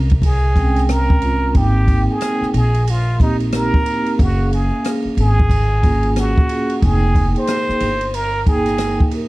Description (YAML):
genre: hip hop, jazz-hop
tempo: 91 BPM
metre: 4/4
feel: swing 63% on 16ths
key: F minor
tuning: A4 = 442 Hz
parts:
  - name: upright bass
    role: bass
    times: 0.0-9.0 s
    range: F1 to C2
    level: -17 LUFS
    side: equal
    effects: none
  - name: open jazz drum kit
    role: drums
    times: 0.1-9.3 s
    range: hi-hat, kick drum, ride cymbal, rim click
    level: -19 LUFS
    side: equal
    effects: none
  - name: trumpet with plunger mute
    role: melody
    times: 0.3-9.1 s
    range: Eb4 to C5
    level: -22 LUFS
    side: right 1 dB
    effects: plate reverb
  - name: vibraphone with soft mallets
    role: accompaniment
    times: 0.5-9.3 s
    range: Ab3 to G5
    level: -21 LUFS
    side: right 1 dB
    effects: plate reverb
room: light reverb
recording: dark, warm production, vinyl crackle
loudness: -14 LUFS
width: side -20 dB against mid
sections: 0.0-9.3 A section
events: none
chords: 0.0 Bbm7; 1.5 Abmaj9; 4.2 Gbmaj7; 6.8 Fm11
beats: 0.23 0.89 | 1.55 2.21 2.87 3.53 | 4.18 4.84 5.50 6.16 | 6.82 7.48 8.14 8.80